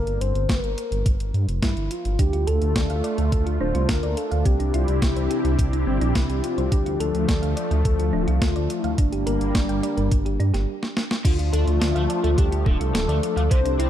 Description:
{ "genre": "synthwave", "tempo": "106 BPM", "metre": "4/4", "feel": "straight", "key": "D minor", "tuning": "A4 = 441 Hz", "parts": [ { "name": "soft octave-layered synth lead", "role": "melody", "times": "0.0-13.9 s", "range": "D4 to C5", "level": "-28 LUFS", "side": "left 2 dB", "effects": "chorus, vintage 12-bit sampler grit, digital delay" }, { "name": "dark detuned saw bass", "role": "bass", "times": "0.0-13.9 s", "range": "D1 to G2", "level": "-23 LUFS", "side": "equal", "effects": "sidechain pumping" }, { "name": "clean 12-bit digital drum machine", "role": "drums", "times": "0.1-13.9 s", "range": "crash cymbal, hi-hat, snare drum", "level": "-29 LUFS", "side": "equal", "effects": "overdrive, studio ambience" }, { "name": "electronic kick drum", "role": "drums", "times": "0.5-13.6 s", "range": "none", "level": "-22 LUFS", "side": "equal", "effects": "overdrive, studio ambience" }, { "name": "lush unison pad", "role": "sustained chords", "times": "2.2-13.9 s", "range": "C3 to G4", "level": "-28 LUFS", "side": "left 1 dB", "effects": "chorus, phaser, sidechain pumping" }, { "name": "thumb-piano-like synth pluck", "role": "arpeggios", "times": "2.2-13.9 s", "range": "C4 to G5", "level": "-32 LUFS", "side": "right 2 dB", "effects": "chorus, digital delay" }, { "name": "overdriven electric guitar", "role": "riff", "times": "11.2-13.9 s", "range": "C3 to D4", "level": "-35 LUFS", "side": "right 3 dB", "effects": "ensemble chorus, digital delay" }, { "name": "airy dreamy lead", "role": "second line", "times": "11.3-13.9 s", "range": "F4 to C5", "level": "-32 LUFS", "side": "left 1 dB", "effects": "chorus, digital delay" } ], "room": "light reverb", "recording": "dark, warm production", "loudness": "-20 LUFS", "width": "side -11 dB against mid", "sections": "0.0-11.2 A section; 11.2-13.9 B section", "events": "break 10.7-11.2; drum fill 10.8-11.2", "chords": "0.0 Gm; 2.2 Dm; 4.5 Cadd9; 6.7 Dm; 9.0 Gm; 11.2 Dm" }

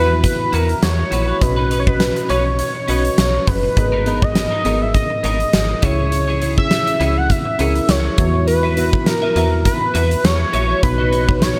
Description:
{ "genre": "1980s-style pop", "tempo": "102 BPM", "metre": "4/4", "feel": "swing 55% on 16ths", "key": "unclear", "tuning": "A4 = 440 Hz", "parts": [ { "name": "octave-doubled lead", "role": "melody", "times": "0.0-11.6 s", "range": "A#4 to F#5", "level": "-22 LUFS", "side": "equal", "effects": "chorus" }, { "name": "FM electric piano with soft pad layer", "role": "accompaniment", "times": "0.0-11.6 s", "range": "G#2 to E5", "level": "-25 LUFS", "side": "equal", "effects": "chorus" }, { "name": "clean electric guitar", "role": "riff", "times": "0.0-11.6 s", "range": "B3 to E5", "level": "-30 LUFS", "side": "equal", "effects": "ensemble chorus, digital delay" }, { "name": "slap-like FM bass", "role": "bass", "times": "0.0-11.5 s", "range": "F#1 to E2", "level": "-22 LUFS", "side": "equal", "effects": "none" }, { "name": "huge arena drum kit", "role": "drums", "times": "0.2-11.6 s", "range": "hi-hat, kick drum, snare drum", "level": "-22 LUFS", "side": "equal", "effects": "none" } ], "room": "light reverb, studio ambience", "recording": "none", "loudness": "-17 LUFS", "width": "mono", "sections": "0.0-11.6 A section", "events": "none", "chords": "0.0 Esus2; 1.4 Badd9; 3.8 G#madd9; 5.8 C#m; 8.2 Esus2; 10.8 Badd9" }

